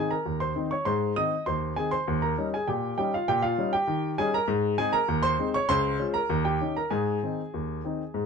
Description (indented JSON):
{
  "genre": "ragtime piano",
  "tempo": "99 BPM",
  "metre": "2/4",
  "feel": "straight",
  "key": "Ab major",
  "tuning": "A4 = 440 Hz",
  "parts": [
    { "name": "clear baby grand piano", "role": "solo", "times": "0.0-8.3 s", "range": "Db2 to Eb6", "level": "-25 LUFS", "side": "equal", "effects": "none" }
  ],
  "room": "light reverb",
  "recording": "close, detailed microphones",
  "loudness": "-24 LUFS",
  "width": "side -5 dB against mid",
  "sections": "0.0-8.3 A section",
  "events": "none",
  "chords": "0.0 Ab; 2.1 Eb7; 3.3 Eb7/Bb; 4.5 Ab; 5.7 Db; 6.3 Eb7; 6.9 Ab"
}